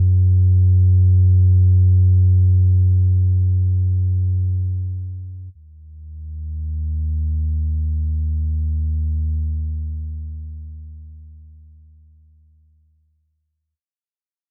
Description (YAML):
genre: ambient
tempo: free time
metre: none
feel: none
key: unclear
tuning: A4 = 437 Hz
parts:
  - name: warm sub bass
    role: bass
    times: 0.0-13.7 s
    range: Eb2 to Gb2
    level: -18 LUFS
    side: equal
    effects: none
room: little or no reverb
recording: dark, warm production, nothing above 10.7 kHz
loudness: -18 LUFS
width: mono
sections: 0.0-13.8 A section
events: fade-out 2.8-13.8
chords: none